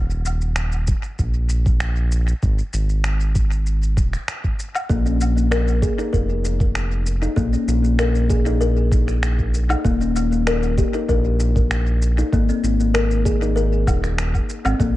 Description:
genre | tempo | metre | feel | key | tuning
organic downtempo | 97 BPM | 4/4 | straight | unclear | A4 = 440 Hz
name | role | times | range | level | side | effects
round analog bass | bass | 0.0-15.0 s | Eb1 to Bb1 | -19 LUFS | equal | none
electronic shaker, finger snaps and woodblock | drums | 0.1-14.9 s | none | -29 LUFS | equal | tape echo
electronic kick drum | drums | 0.9-14.9 s | none | -21 LUFS | equal | none
kalimba | arpeggios | 4.9-14.9 s | Bb3 to Bb4 | -22 LUFS | left 4 dB | tape echo
room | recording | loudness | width
little or no reverb | echo-heavy mix, nothing above 10.8 kHz | -17 LUFS | side -16 dB against mid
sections
0.0-15.0 A section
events
none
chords
0.0 Eb5; 2.4 Ab5; 4.9 Bbm; 9.8 Eb7(no3); 12.3 Ab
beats
0.57 1.19 1.81 | 2.42 3.04 3.66 4.28 | 4.90 5.52 6.14 6.75 | 7.37 7.99 8.61 9.23 | 9.85 10.47 11.09 11.70 | 12.32 12.94 13.56 14.18 | 14.80

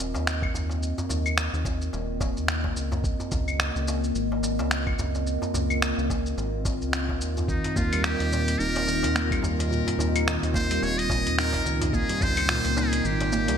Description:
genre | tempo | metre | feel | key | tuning
organic downtempo | 108 BPM | 4/4 | swing 57% on 16ths | Eb mixolydian | A4 = 439 Hz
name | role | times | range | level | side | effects
warbly tape-like pad | sustained chords | 0.0-13.6 s | Bb3 to Eb5 | -30 LUFS | equal | chorus, built-in reverb, sidechain pumping
round analog bass | bass | 0.0-13.6 s | Eb1 to Eb2 | -28 LUFS | equal | tube saturation, sidechain pumping
dusty soul sampler-style drum kit | drums | 0.0-13.6 s | claves, finger snaps, hi-hat, shaker | -30 LUFS | left 1 dB | none
darbuka | percussion | 0.1-13.6 s | none | -37 LUFS | left 1 dB | none
electronic kick drum | drums | 0.4-12.3 s | none | -30 LUFS | equal | none
trumpet with metal mute | melody | 7.5-13.6 s | Eb4 to Eb5 | -28 LUFS | equal | ping-pong delay
handpan | arpeggios | 7.5-13.6 s | Bb2 to Eb4 | -29 LUFS | right 1 dB | digital delay
room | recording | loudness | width
moderate lush hall reverb, RT60 1.8 s, digital ambience | bright 1980s-style digital production | -23 LUFS | side -8 dB against mid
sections
0.0-13.6 A section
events
none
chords
0.0 Eb5; 3.0 Dbmaj7; 7.5 Eb; 11.9 Dbmaj7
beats
0.27 | 0.82 1.38 1.94 2.49 | 3.05 3.60 4.16 4.71 | 5.27 5.82 6.38 6.93 | 7.49 8.05 8.60 9.16 | 9.71 10.27 10.82 11.38 | 11.94 12.49 13.05

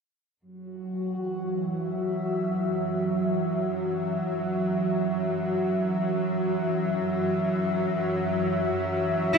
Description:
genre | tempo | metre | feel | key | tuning
ambient | free time | none | none | unclear | A4 = 441 Hz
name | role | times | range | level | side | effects
airy breathy pad | sustained chords | 0.6-9.4 s | E3 to E5 | -26 LUFS | equal | chorus
clear symphonic cello section | bass | 0.4-9.4 s | F#2 | -40 LUFS | equal | none
bowed-like drone | drone | 1.1-9.4 s | F#3 | -32 LUFS | right 1 dB | built-in reverb
room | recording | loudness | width
wet huge ambient reverb, RT60 8.4 s | none | -25 LUFS | side -5 dB against mid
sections
0.4-9.4 A section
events
fade-in on cello section 0.4-9.4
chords
0.4 F#5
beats
free time

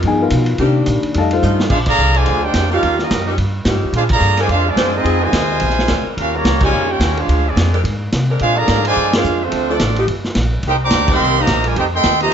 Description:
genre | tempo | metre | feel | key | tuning
jazz, big band swing | 215 BPM | 4/4 | swing 60% on 8ths | Bb major | A4 = 437 Hz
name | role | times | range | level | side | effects
upright bass | bass | 0.0-12.3 s | G1 to C3 | -18 LUFS | equal | none
vintage drum kit | drums | 0.0-12.3 s | crash cymbal, hi-hat, kick drum, ride cymbal, snare drum | -21 LUFS | equal | none
dark grand piano | accompaniment | 0.1-1.6 s | Eb3 to A5 | -17 LUFS | left 4 dB | none
mellow saxophone section | sustained chords | 0.6-12.3 s | Eb3 to C5 | -23 LUFS | equal | none
clear trumpet section | melody | 1.7-12.3 s | A3 to D6 | -18 LUFS | right 1 dB | none
clear trombone section | second line | 1.7-12.3 s | Bb2 to G4 | -21 LUFS | right 3 dB | none
room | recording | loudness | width
light reverb | dark, warm production, nothing above 7.7 kHz | -13 LUFS | side -8 dB against mid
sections
0.0-1.7 A section; 1.7-12.3 B section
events
grand piano solo 0.0-1.7; drum fill 1.4; band accent 1.8, 4.1, 6.6, 9.1, 11.1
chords
0.0 G7alt; 0.6 Cm7; 1.1 F9; 1.7 Bb9; 2.8 Eb9; 3.9 Bb9; 5.1 Fm7; 5.6 Bb9; 6.2 Eb9; 7.3 Bb9; 9.5 Dm7; 10.1 Gm; 10.6 Cm7; 11.8 F9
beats
0.03 0.30 | 0.58 0.86 1.14 1.42 | 1.70 1.98 2.26 2.54 | 2.82 3.10 3.38 3.66 | 3.94 4.22 4.50 4.78 | 5.06 5.34 5.62 5.89 | 6.17 6.45 6.73 7.01 | 7.29 7.57 7.85 8.13 | 8.41 8.69 8.97 9.25 | 9.53 9.81 10.09 10.37 | 10.65 10.93 11.21 11.49 | 11.77 12.05 12.33

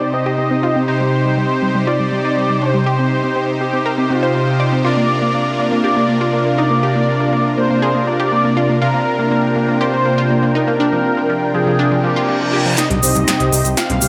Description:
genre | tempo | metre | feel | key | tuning
progressive house | 121 BPM | 4/4 | straight | C minor | A4 = 439 Hz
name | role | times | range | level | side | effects
unison lead | melody | 0.0-14.1 s | F4 to F5 | -23 LUFS | equal | lush chorus, digital delay
lush unison pad | sustained chords | 0.0-14.1 s | C3 to G5 | -25 LUFS | equal | chorus
analog pluck | arpeggios | 0.0-14.1 s | F3 to D5 | -23 LUFS | equal | chorus, cassette tape, digital delay
soft supersaw | stabs | 0.0-14.1 s | C3 to C5 | -20 LUFS | equal | cassette tape, low-pass filter
reverse cymbal and riser | sound effects | 12.0-14.1 s | none | -27 LUFS | equal | none
big-room dance drum kit | drums | 12.8-14.1 s | hi-hat, snare drum | -22 LUFS | equal | high-pass filter on hats, low-pass filter on hats, high-pass filter on snare, low-pass filter on snare, high-pass filter on room, low-pass filter on room
tube shaker | percussion | 12.8-14.1 s | none | -23 LUFS | equal | none
fat analog bass | bass | 12.9-14.1 s | C2 | -22 LUFS | equal | none
congas | percussion | 12.9-14.0 s | none | -27 LUFS | equal | none
room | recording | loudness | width
moderate digital room reverb, RT60 1.1 s, digital ambience | none | -16 LUFS | mono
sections
0.0-12.8 A section; 12.8-14.1 B section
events
filter sweep on synth pluck 0.0-12.8; filter sweep on analog synth pad 0.0-12.8; reverse cymbal 12.0-12.8; build-up 12.8-14.1; drum fill 12.8-14.1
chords
0.0 Cm; 4.8 Bb/C; 12.8 Cm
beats
0.39 | 0.88 1.38 1.87 2.37 | 2.86 3.36 3.86 4.35 | 4.85 5.34 5.84 6.33 | 6.83 7.33 7.82 8.32 | 8.81 9.31 9.81 10.30 | 10.80 11.29 11.79 12.29 | 12.78 13.28 13.77

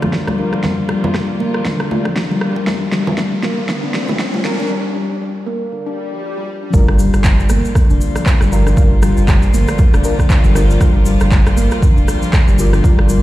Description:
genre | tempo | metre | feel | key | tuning
afro house | 118 BPM | 4/4 | swing 58% on 16ths | G minor | A4 = 438 Hz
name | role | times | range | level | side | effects
warm chamber string section | sustained chords | 0.0-13.2 s | D3 to F4 | -25 LUFS | equal | sidechain pumping, low-pass filter
handpan | arpeggios | 0.0-13.2 s | D3 to D4 | -20 LUFS | left 2 dB | sidechain pumping, low-pass filter, dub echo
deep mellow chord stab | stabs | 0.0-13.2 s | D4 to Bb4 | -26 LUFS | left 3 dB | ensemble chorus, sidechain pumping, dub echo
electronic rim click, snare drum and handclaps | drums | 0.0-13.1 s | none | -23 LUFS | equal | overdrive
congas | percussion | 0.0-4.7 s | none | -23 LUFS | right 1 dB | none
riser and swell | sound effects | 0.2-6.7 s | none | -27 LUFS | right 1 dB | none
electronic kick drum | drums | 0.1-13.0 s | none | -13 LUFS | equal | overdrive, high-pass filter on kick
warm sub bass | bass | 6.7-13.2 s | F1 to G1 | -15 LUFS | equal | sidechain pumping
cabasa | percussion | 6.7-13.2 s | none | -32 LUFS | left 2 dB | none
room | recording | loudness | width
light reverb, small room ambience | played on a big sound system in a bare room, large studio reverb, high-pass filter | -12 LUFS | side -15 dB against mid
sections
0.0-6.7 A section; 6.7-13.2 B section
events
build-up 0.0-6.7; drum fill 0.0-4.7; filter sweep on handpan 0.0-6.7; filter sweep on synth stab 0.0-6.7; filter sweep on string section 0.0-6.7; filter sweep 0.0-6.7; riser 0.2-4.7; break 4.7-6.7; swell 5.8-6.7; drop 6.7-13.2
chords
0.0 Gm7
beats
0.13 | 0.64 1.15 1.66 2.16 | 2.67 3.18 3.69 4.20 | 4.71 5.21 5.72 6.23 | 6.74 7.25 7.76 8.27 | 8.77 9.28 9.79 10.30 | 10.81 11.32 11.82 12.33 | 12.84

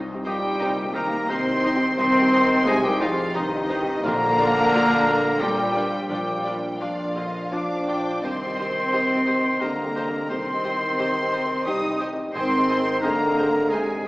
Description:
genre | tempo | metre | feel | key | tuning
cinematic, emotional film score for orchestra | 87 BPM | 3/4 | rubato | C minor | A4 = 441 Hz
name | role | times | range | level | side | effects
dark grand piano | accompaniment | 0.0-14.1 s | Bb1 to Eb5 | -30 LUFS | equal | none
rich studio double bass section | bass | 0.0-14.1 s | Ab1 to C2 | -40 LUFS | right 1 dB | none
rich studio violin section | melody | 0.2-13.8 s | C5 to G5 | -39 LUFS | left 1 dB | none
clear clarinet | second line | 0.2-14.1 s | Eb4 to Eb5 | -27 LUFS | equal | none
clear studio violin section | second line | 0.2-14.1 s | Eb5 to Eb6 | -32 LUFS | left 1 dB | none
dark French horn section | sustained chords | 0.2-14.1 s | G2 to G3 | -27 LUFS | equal | none
flute section | second line | 0.3-14.1 s | Eb5 to Eb6 | -28 LUFS | equal | none
bright chamber viola section | accompaniment | 0.3-13.8 s | D3 to C5 | -33 LUFS | equal | none
rich studio cello section | bass | 0.3-14.1 s | Eb3 to Eb4 | -26 LUFS | equal | none
room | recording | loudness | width
wet scoring stage reverb, RT60 1.5 s | heard from further back in the room, small speaker sound | -20 LUFS | side -20 dB against mid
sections
0.0-14.1 A section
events
none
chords
0.0 Cm; 4.0 Bb; 8.2 Cm; 12.3 Ab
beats
0.60 1.29 | 1.98 2.66 3.34 | 4.04 4.72 5.40 | 6.09 6.79 7.51 | 8.22 8.92 9.60 | 10.29 10.97 11.65 | 12.33 13.02 13.71

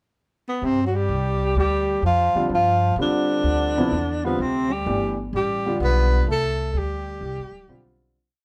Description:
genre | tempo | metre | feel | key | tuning
modal jazz | 127 BPM | 4/4 | swing 68% on 8ths | G mixolydian | A4 = 441 Hz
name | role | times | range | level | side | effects
breathy tenor saxophone | melody | 0.5-8.0 s | B3 to B4 | -25 LUFS | equal | none
brilliant trombone | second line | 0.6-8.0 s | B2 to B3 | -32 LUFS | equal | none
upright bass | bass | 0.6-8.1 s | D1 to D3 | -27 LUFS | equal | none
warm grand piano | accompaniment | 2.4-8.2 s | C3 to G4 | -28 LUFS | equal | none
room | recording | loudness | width
moderate studio reverb, RT60 0.8 s | band playing live in one room | -22 LUFS | mono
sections
0.0-0.6 pickup bar; 0.6-8.1 A section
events
fade-out 6.3-8.1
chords
0.0 N.C.; 0.6 G7sus4; 4.4 Csus2/G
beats
0.14 | 0.61 1.09 1.56 2.03 | 2.50 2.97 3.44 3.92 | 4.39 4.86 5.33 5.80 | 6.27 6.74 7.21 7.67

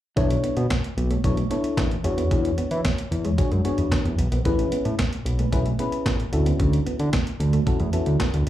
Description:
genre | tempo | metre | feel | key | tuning
early-eighties boogie funk | 112 BPM | 4/4 | straight | B dorian | A4 = 440 Hz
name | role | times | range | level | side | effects
mellow FM electric piano | accompaniment | 0.2-8.3 s | B3 to C#5 | -28 LUFS | left 3 dB | chorus, phaser, plate reverb, slapback echo
mellow electric guitar | riff | 0.2-8.4 s | G#3 to D4 | -31 LUFS | right 4 dB | wide subtle chorus, slapback echo
fat analog bass | bass | 0.2-8.5 s | A1 to E3 | -22 LUFS | equal | none
crisp 8-bit digital drum machine | drums | 0.2-8.5 s | handclaps, hi-hat, kick drum, snare drum | -25 LUFS | equal | none
room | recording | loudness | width
light reverb | live gig heard through the venue's PA, club reverb | -20 LUFS | side -13 dB against mid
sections
0.2-8.5 A section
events
none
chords
0.2 Bm11; 2.0 E13; 4.5 Amaj9; 6.3 Dmaj9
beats
| 0.17 0.70 1.24 1.77 | 2.31 2.85 3.38 3.92 | 4.45 4.99 5.52 6.06 | 6.60 7.13 7.67 8.20

